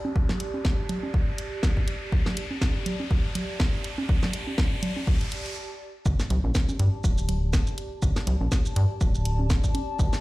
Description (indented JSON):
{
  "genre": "minimal techno",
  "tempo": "122 BPM",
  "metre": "4/4",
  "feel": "swing 56% on 16ths",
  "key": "unclear",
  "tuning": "A4 = 439 Hz",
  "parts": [
    { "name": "congas", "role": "percussion", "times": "0.0-9.9 s", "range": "none", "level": "-33 LUFS", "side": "right 2 dB", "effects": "dub echo" },
    { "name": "riser and impact", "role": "sound effects", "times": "0.0-8.0 s", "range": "none", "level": "-36 LUFS", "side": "equal", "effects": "none" },
    { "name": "warbly tape-like pad", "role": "texture", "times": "0.0-10.2 s", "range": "G4 to A5", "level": "-37 LUFS", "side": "equal", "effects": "chorus, built-in reverb, sidechain pumping" },
    { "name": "electronic kick drum", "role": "drums", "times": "0.2-10.1 s", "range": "none", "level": "-24 LUFS", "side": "equal", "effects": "none" },
    { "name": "garage drum kit", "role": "drums", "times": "0.3-10.2 s", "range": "hi-hat, shaker, snare drum", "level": "-32 LUFS", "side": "equal", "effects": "none" },
    { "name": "rubbery square bass", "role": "bass", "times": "6.1-10.1 s", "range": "D1 to G2", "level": "-24 LUFS", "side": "equal", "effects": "sidechain pumping" }
  ],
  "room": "light reverb",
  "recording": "played on a big sound system in a bare room, stone room reverb",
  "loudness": "-23 LUFS",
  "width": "side -19 dB against mid",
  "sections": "0.0-6.1 A section; 6.1-10.2 B section",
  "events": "build-up 0.0-6.1; riser 0.0-5.6; stop 5.6-6.1; drop 6.1-10.2; impact 6.1-8.0",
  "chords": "0.0 G5",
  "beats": "| 0.16 0.65 1.14 1.63 | 2.12 2.62 3.11 3.60 | 4.09 4.58 5.07 5.57 | 6.06 6.55 7.04 7.53 | 8.02 8.52 9.01 9.50 | 9.99"
}